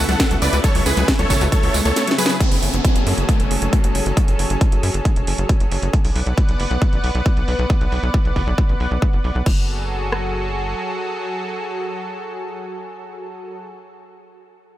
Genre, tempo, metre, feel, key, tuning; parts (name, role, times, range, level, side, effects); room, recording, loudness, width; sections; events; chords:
uplifting trance; 136 BPM; 4/4; straight; F# minor; A4 = 442 Hz
lush unison pad; sustained chords; 0.0-13.6 s; C#3 to F#5; -25 LUFS; equal; chorus, vintage 12-bit sampler grit, sidechain pumping
analog pluck; arpeggios; 0.0-2.4 s; C#3 to F#4; -27 LUFS; left 3 dB; chorus, sidechain pumping, digital delay
tight sequencer bass; bass; 0.0-10.7 s; E1 to F#2; -21 LUFS; equal; sidechain pumping
big supersaw lead; melody; 0.1-2.3 s; G#4 to F#5; -23 LUFS; equal; sidechain pumping, digital delay
techno drum kit; drums; 0.1-9.6 s; crash cymbal, hi-hat, snare drum, tambourine; -25 LUFS; right 1 dB; low-pass filter on hats, low-pass filter on perc, low-pass filter on snare, low-pass filter on cymbals
big-room dance drum kit; drums; 0.2-10.2 s; kick drum, rim click; -17 LUFS; equal
downlifter; sound effects; 2.4-5.9 s; -27 LUFS; equal
digital ambience; -16 LUFS; side -14 dB against mid
0.0-2.4 A section; 2.4-9.5 B section; 9.5-13.0 C section
drop 0.0-2.4; drum fill 2.0-2.4
0.0 Aadd9; 2.4 F#madd9; 5.9 Bm; 9.5 F#madd9